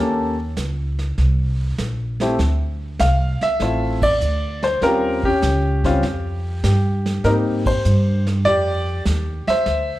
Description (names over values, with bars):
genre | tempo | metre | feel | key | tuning
jazz piano trio | 99 BPM | 4/4 | swing 69% on 8ths | unclear | A4 = 441 Hz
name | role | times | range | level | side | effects
warm grand piano | melody | 0.0-10.0 s | G3 to F5 | -20 LUFS | left 1 dB | none
upright bass | bass | 0.0-10.0 s | A1 to Ab2 | -20 LUFS | equal | none
vintage brush drum kit | drums | 0.6-10.0 s | brushed snare drum, hi-hat, kick drum, ride cymbal, snare drum | -28 LUFS | right 2 dB | none
room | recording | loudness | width
light reverb | none | -17 LUFS | side -16 dB against mid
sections
0.0-10.0 A section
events
band accent 3.9-4.2, 7.5-7.8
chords
0.0 Eb7#11; 2.4 Dm7; 4.8 Eb13; 7.2 Abmaj7